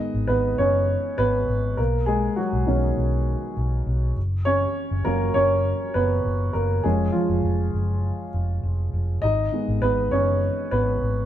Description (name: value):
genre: piano-driven pop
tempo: 101 BPM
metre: 4/4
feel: straight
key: F# major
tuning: A4 = 441 Hz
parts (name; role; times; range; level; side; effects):
- dark upright piano; accompaniment; 0.0-11.3 s; D#3 to D#5; -23 LUFS; equal; none
- vintage muted fingered electric bass; bass; 0.1-11.3 s; E#1 to B1; -24 LUFS; equal; none
room: moderate studio reverb, RT60 0.7 s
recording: band playing live in one room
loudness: -20 LUFS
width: side -11 dB against mid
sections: 0.0-11.3 A section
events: upright piano solo 0.0-11.3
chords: 0.0 G#m; 1.8 Badd9; 4.2 F#; 6.8 C#/E#; 9.2 G#m